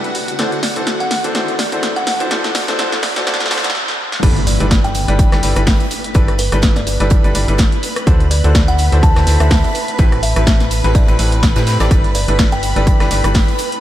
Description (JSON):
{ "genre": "piano house", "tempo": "125 BPM", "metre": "4/4", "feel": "swing 56% on 16ths", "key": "G major", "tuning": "A4 = 440 Hz", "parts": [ { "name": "string machine, violins", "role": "sustained chords", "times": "0.0-13.8 s", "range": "F#4 to B5", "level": "-25 LUFS", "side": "right 1 dB", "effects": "ensemble chorus, sidechain pumping" }, { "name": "bright upright piano", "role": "riff", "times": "0.0-13.5 s", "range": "A2 to D5", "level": "-21 LUFS", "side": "equal", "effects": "sidechain pumping, tape echo" }, { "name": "punchy analog drum machine", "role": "drums", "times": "0.0-13.8 s", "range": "crash cymbal, hi-hat, rim click, snare drum", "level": "-20 LUFS", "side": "equal", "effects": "none" }, { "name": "riser and impact", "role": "sound effects", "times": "0.0-6.1 s", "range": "none", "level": "-27 LUFS", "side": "equal", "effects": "none" }, { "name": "kalimba", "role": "melody", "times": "0.6-12.9 s", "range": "B4 to A5", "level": "-24 LUFS", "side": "equal", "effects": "tape echo" }, { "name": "organ-like FM bass", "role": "bass", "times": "4.2-13.5 s", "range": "G1 to A2", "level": "-16 LUFS", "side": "equal", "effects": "tube saturation, sidechain pumping" }, { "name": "electronic kick drum", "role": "drums", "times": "4.2-13.5 s", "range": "none", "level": "-13 LUFS", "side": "equal", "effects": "overdrive" }, { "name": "tight metal drum kit", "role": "drums", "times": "4.2-13.7 s", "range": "hi-hat, snare drum", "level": "-31 LUFS", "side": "right 3 dB", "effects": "none" } ], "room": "moderate cathedral reverb, RT60 4.9 s", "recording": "dreamy mix soaked in reverb, high-pass filter", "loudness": "-12 LUFS", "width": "side -13 dB against mid", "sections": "0.0-4.2 A section; 4.2-13.8 B section", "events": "build-up 0.0-4.2; drum fill 0.0-3.7, 3.7-4.2; riser 0.0-3.7; filter sweep on upright piano 0.0-4.2; stop 3.7-4.2; drop 4.2-13.8; impact 4.2-6.1", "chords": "0.1 D9; 4.2 G69; 7.8 D9; 10.0 Am9; 11.9 G69", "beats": "| 0.39 0.87 1.35 1.83 | 2.31 2.79 3.27 3.75 | 4.23 4.71 5.19 5.67 | 6.15 6.63 7.11 7.59 | 8.07 8.55 9.03 9.51 | 9.99 10.47 10.95 11.43 | 11.91 12.39 12.87 13.35" }